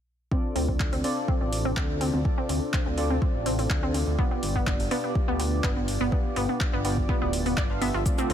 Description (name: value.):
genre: progressive house.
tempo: 124 BPM.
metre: 4/4.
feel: straight.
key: D dorian.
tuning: A4 = 440 Hz.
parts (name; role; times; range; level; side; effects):
wide unison pluck; arpeggios; 0.3-8.3 s; B3 to D5; -30 LUFS; equal; sidechain pumping, ping-pong delay.
chorused polysynth; stabs; 0.3-8.3 s; B3 to F5; -31 LUFS; equal; vintage 12-bit sampler grit, sidechain pumping, ping-pong delay.
electronic kick drum; drums; 0.3-8.2 s; none; -26 LUFS; equal; overdrive.
fat analog bass; bass; 0.6-8.3 s; D1 to D2; -29 LUFS; equal; tube saturation, sidechain pumping.
deep house drum kit; drums; 0.6-8.3 s; handclaps, hi-hat; -35 LUFS; equal; sidechain pumping on hats.
warm analog pad; sustained chords; 8.1-8.3 s; D3 to F4; -31 LUFS; right 3 dB; chorus, sidechain pumping.
cabasa; percussion; 8.1-8.3 s; none; -38 LUFS; left 4 dB; none.
room: digital ambience.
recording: none.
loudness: -24 LUFS.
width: side -9 dB against mid.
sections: 0.3-8.3 A section.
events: filter sweep on synth pluck 0.3-8.3.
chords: 0.3 Dm7; 4.2 G7.